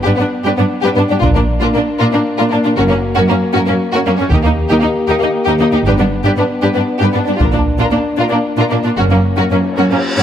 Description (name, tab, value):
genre	cinematic, epic orchestral film score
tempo	78 BPM (dotted quarters)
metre	6/8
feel	straight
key	unclear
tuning	A4 = 441 Hz
part	warm symphonic violin section	melody	0.0-10.2 s	Db4 to B4	-23 LUFS	left 2 dB	none
part	warm symphonic violin section	second line	0.0-10.2 s	Bb3 to G4	-19 LUFS	left 2 dB	none
part	mellow French horn section	sustained chords	0.0-10.2 s	Bb3 to G4	-19 LUFS	left 3 dB	none
part	warm symphonic viola section	accompaniment	0.1-10.2 s	Db4 to Eb4	-20 LUFS	right 1 dB	none
part	rich symphonic cello section	bass	0.1-10.2 s	Eb2 to Bb2	-17 LUFS	right 2 dB	none
part	rich symphonic double bass section	bass	1.2-9.1 s	Gb1 to Eb2	-17 LUFS	right 1 dB	none
part	taiko ensemble	drums	1.2-8.4 s	none	-18 LUFS	equal	none
part	cymbal swell	sound effects	9.6-10.2 s	none	-21 LUFS	equal	none
room	moderate scoring stage reverb, RT60 1.6 s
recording	close, detailed microphones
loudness	-11 LUFS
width	side -9 dB against mid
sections	0.0-10.2 A section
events	build-up 0.0-10.2; cymbal swell 9.6-10.2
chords	0.0 G; 1.2 Bb; 2.8 Gb; 4.3 Eb; 5.9 G; 7.4 Bb; 9.0 Gb